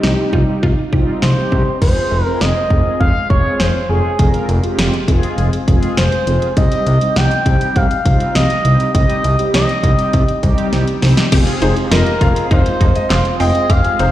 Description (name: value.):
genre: synth-pop.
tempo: 101 BPM.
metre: 4/4.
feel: straight.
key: F minor.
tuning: A4 = 440 Hz.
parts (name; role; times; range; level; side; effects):
expressive synth lead; melody; 0.0-14.1 s; Eb4 to G5; -19 LUFS; equal; chorus, digital delay.
mellow synth brass; accompaniment; 0.0-14.0 s; G3 to Bb4; -21 LUFS; right 1 dB; chorus.
resonant blip pluck; arpeggios; 0.0-1.8, 11.3-14.1 s; C4 to G4; -24 LUFS; equal; phaser, digital delay.
fat analog bass; bass; 0.0-14.1 s; F1 to C2; -15 LUFS; equal; none.
house drum kit; drums; 0.0-14.1 s; crash cymbal, handclaps, hi-hat, kick drum, snare drum; -17 LUFS; equal; none.
warm grand piano; second line; 11.6-14.1 s; C5 to G5; -23 LUFS; left 3 dB; digital delay.
room: moderate lush hall reverb, RT60 2.0 s.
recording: played on a big sound system in a bare room, large studio reverb.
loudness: -12 LUFS.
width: side -13 dB against mid.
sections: 0.0-1.8 A section; 1.8-11.3 B section; 11.3-14.1 C section.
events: drum fill 10.7-11.3.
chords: 0.0 Cm; 1.8 Fm; 6.6 Cm; 11.3 Fmadd9.